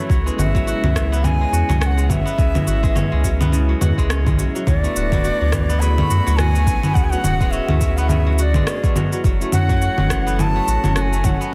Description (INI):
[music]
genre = organic downtempo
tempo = 105 BPM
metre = 4/4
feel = swing 58% on 16ths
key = unclear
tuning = A4 = 440 Hz
[part]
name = bell-like tine electric piano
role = accompaniment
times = 0.0-11.4 s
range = G#3 to D5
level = -31 LUFS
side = equal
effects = sidechain pumping, delay
[part]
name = warbly tape-like pad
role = sustained chords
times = 0.0-11.5 s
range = C#3 to A4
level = -33 LUFS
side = equal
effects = chorus, built-in reverb, phaser, sidechain pumping
[part]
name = kora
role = arpeggios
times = 0.0-11.5 s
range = C#3 to F#4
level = -29 LUFS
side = equal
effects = delay
[part]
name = warm sub bass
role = bass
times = 0.1-11.3 s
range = D1 to F#2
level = -21 LUFS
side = equal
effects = sidechain pumping
[part]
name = electronic kick drum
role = drums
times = 0.1-11.4 s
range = none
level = -22 LUFS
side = equal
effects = overdrive
[part]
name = electronic shaker, congas and rim click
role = drums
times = 0.1-11.5 s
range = none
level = -24 LUFS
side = equal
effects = overdrive, soft clipping on snare
[part]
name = breathy bright ney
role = melody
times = 0.4-11.5 s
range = D5 to B5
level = -27 LUFS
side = equal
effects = digital delay
[sound]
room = light reverb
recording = dense, heavily limited modern master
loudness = -18 LUFS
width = mono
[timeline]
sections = 0.1-11.5 A section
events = none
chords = 0.1 C#m7; 4.7 D6; 9.2 F#m7